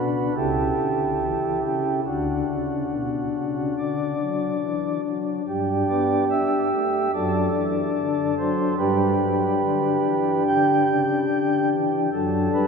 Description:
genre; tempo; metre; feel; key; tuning
classical, chorale-style piece for pipe organ; 72 BPM; 4/4; rubato; D major; A4 = 439 Hz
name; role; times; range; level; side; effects
pipe organ, flutes; solo; 0.0-12.7 s; C#2 to G5; -20 LUFS; equal; none
room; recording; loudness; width
wet cathedral reverb, RT60 4.9 s; minimal, uncompressed stereo recording; -20 LUFS; side -5 dB against mid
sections
0.0-12.7 A section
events
none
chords
0.4 A7/C#; 2.1 D; 5.5 G; 7.1 D/F#; 8.8 G; 12.1 D/F#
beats
0.36 1.21 | 2.06 2.90 3.77 4.62 | 5.46 6.30 7.14 7.96 | 8.80 9.62 10.47 11.31 | 12.14

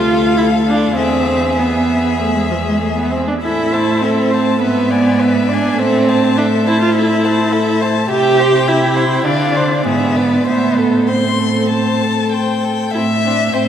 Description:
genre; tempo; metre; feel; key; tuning
quick classical-period movement for string quartet; 96-106 BPM; 4/4; rubato; A minor; A4 = 440 Hz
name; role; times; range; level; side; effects
dark violin; melody; 0.0-13.7 s; C5 to C6; -21 LUFS; left 5 dB; none
warm violin; second line; 0.0-13.6 s; C4 to D5; -21 LUFS; left 3 dB; none
warm viola; accompaniment; 0.0-13.7 s; F3 to G4; -15 LUFS; right 2 dB; none
warm cello; bass; 0.0-13.7 s; D2 to D3; -18 LUFS; right 1 dB; none
room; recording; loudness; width
wet church reverb, RT60 3.5 s; none; -12 LUFS; side -9 dB against mid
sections
0.0-12.9 A section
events
none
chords
0.0 Dm; 1.0 E; 3.4 Am; 4.6 E7/G#; 5.8 Am; 8.1 C; 9.3 Dm7; 9.9 E7/G#; 10.5 Am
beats
0.38 | 0.98 1.59 2.20 2.81 | 3.43 4.02 4.61 5.20 | 5.79 6.38 6.96 7.54 | 8.11 8.68 9.26 9.86 | 10.47 11.09 11.71 12.33 | 12.95 13.55

